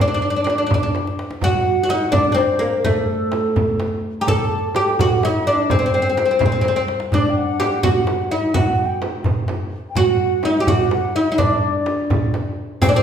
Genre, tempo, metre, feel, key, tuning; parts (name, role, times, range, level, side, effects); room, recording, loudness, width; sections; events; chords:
Persian modal ensemble; 84 BPM (dotted quarters); 6/8; straight; D dastgah homayun; A4 = 440 Hz
oud; melody; 0.0-13.0 s; A3 to A4; -18 LUFS; equal
tombak; percussion; 0.0-12.9 s; -24 LUFS; left 2 dB
frame drum; percussion; 0.5-12.9 s; -23 LUFS; right 3 dB
baroque flute; second line; 1.4-13.0 s; A4 to Bb5; -25 LUFS; left 2 dB
riq; percussion; 12.8-12.9 s; -27 LUFS; left 4 dB
wet recital hall reverb, RT60 1.3 s; recorded in a church or concert hall; -16 LUFS; side -8 dB against mid
0.0-1.4 A section; 1.4-12.8 B section
drum fill 1.0-1.4, 6.7-7.1